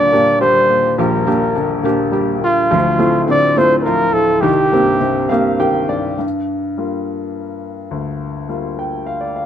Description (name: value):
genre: acoustic folk-pop ballad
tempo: 104 BPM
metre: 3/4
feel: straight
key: G minor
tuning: A4 = 435 Hz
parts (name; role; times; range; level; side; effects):
- mellow flugelhorn; melody; 0.0-5.6 s; F4 to D5; -14 LUFS; right 1 dB; none
- warm upright piano; accompaniment; 0.0-9.5 s; D1 to G5; -19 LUFS; left 2 dB; none
- felt-muted upright piano; arpeggios; 0.0-6.2 s; Eb3 to G4; -18 LUFS; right 1 dB; none
room: light reverb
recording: minimal, uncompressed stereo recording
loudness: -13 LUFS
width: side -9 dB against mid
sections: 0.0-6.2 A section; 6.2-9.5 B section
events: none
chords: 0.0 Ebmaj9; 2.7 Dm7; 4.4 Cm7; 6.2 Gm7